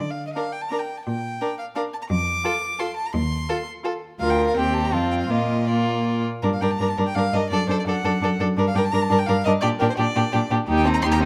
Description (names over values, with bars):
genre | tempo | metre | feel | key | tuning
quick classical-period movement for string quartet | 170 BPM | 3/4 | rubato | Bb major, G minor from 6.4 s | A4 = 441 Hz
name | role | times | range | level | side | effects
rich violin | melody | 0.0-11.2 s | Bb4 to D6 | -30 LUFS | equal | none
rich cello | bass | 0.0-11.3 s | D2 to D3 | -26 LUFS | equal | none
warm violin | second line | 0.4-11.3 s | Eb4 to Bb4 | -28 LUFS | equal | none
rich viola | accompaniment | 0.4-11.3 s | Bb3 to F4 | -28 LUFS | equal | none
room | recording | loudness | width
moderate recital hall reverb, RT60 1.7 s | close, detailed microphones | -23 LUFS | mono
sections
0.0-6.4 A section; 6.4-11.3 B section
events
none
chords
0.0 Bb/D; 1.1 Bb; 2.1 F; 3.1 F7(no3)/Eb; 4.2 Bb/D; 4.6 Cm/Eb; 4.9 F; 5.3 Bb; 6.4 Gm; 7.5 D/F#; 8.6 Gm; 9.6 Gm/Bb; 10.7 Cm/Eb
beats
| 0.01 0.36 0.72 | 1.07 1.42 1.76 | 2.10 2.45 2.80 | 3.14 3.50 3.85 | 4.21 4.57 4.93 | 5.30 5.69 6.06 | 6.44 6.80 7.16 | 7.52 7.87 8.23 | 8.58 8.93 9.29 | 9.63 9.98 10.33 | 10.68 11.03